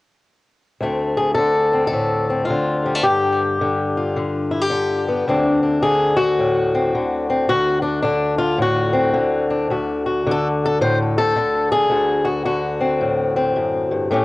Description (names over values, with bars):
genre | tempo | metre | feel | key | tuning
acoustic country blues, solo or duo | 108 BPM | 4/4 | swing 63% on 8ths | D mixolydian | A4 = 440 Hz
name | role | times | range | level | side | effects
fingerpicked swing-style acoustic guitar | solo | 0.8-14.2 s | D2 to C5 | -16 LUFS | left 2 dB | cassette tape, analog delay
room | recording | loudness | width
light reverb | home recording on cassette | -16 LUFS | side -19 dB against mid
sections
0.8-5.3 A section; 5.3-14.2 B section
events
none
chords
0.8 D5; 3.0 G7(no3); 5.3 D7